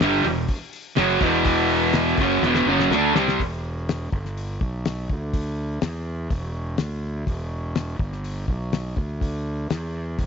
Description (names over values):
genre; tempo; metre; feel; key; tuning
garage rock duo or trio; 124 BPM; 4/4; straight; E minor; A4 = 440 Hz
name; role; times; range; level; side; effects
fuzz guitar; riff; 0.0-3.4 s; E2 to D4; -18 LUFS; right 1 dB; distortion
fuzz fingered electric bass; bass; 0.0-10.3 s; E1 to E2; -28 LUFS; right 1 dB; overdrive
cloth-damped thuddy drum kit; drums; 0.0-10.3 s; hi-hat, kick drum, snare drum; -26 LUFS; left 2 dB; none
room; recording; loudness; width
small room ambience; 1960s-style stereo, nothing above 7.7 kHz; -21 LUFS; side -6 dB against mid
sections
0.0-3.4 A section; 3.4-10.3 B section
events
drum fill 2.4-3.4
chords
0.0 Em; 3.4 N.C.